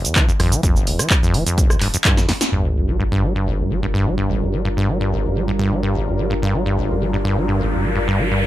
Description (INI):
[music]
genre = acid house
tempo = 127 BPM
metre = 4/4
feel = straight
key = G minor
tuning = A4 = 439 Hz
[part]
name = acid bass, saw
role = riff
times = 0.0-8.5 s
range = F1 to G3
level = -20 LUFS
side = equal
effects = ping-pong delay
[part]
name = punchy analog drum machine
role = drums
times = 0.0-2.5 s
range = handclaps, hi-hat, rim click, shaker, snare drum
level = -20 LUFS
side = right 1 dB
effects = none
[part]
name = electronic kick drum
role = drums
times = 0.2-2.1 s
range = none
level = -17 LUFS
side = equal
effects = none
[part]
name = saturated sub bass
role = bass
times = 0.4-8.5 s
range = F1 to Ab1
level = -24 LUFS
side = equal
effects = tube saturation, sidechain pumping
[part]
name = lush unison pad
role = sustained chords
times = 2.5-8.5 s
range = G3 to Bb4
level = -25 LUFS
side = equal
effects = chorus, sidechain pumping
[part]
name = sub drop and riser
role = sound effects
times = 2.5-8.5 s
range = none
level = -25 LUFS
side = equal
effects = none
[sound]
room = light reverb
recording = none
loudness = -16 LUFS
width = side -14 dB against mid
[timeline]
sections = 0.0-2.5 A section; 2.5-8.5 B section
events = drum fill 2.2-2.5; band accent 2.4; impact 2.5-4.4; filter sweep on analog synth pad 2.5-8.5; riser 6.9-8.5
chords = 0.0 N.C.; 2.5 Gm7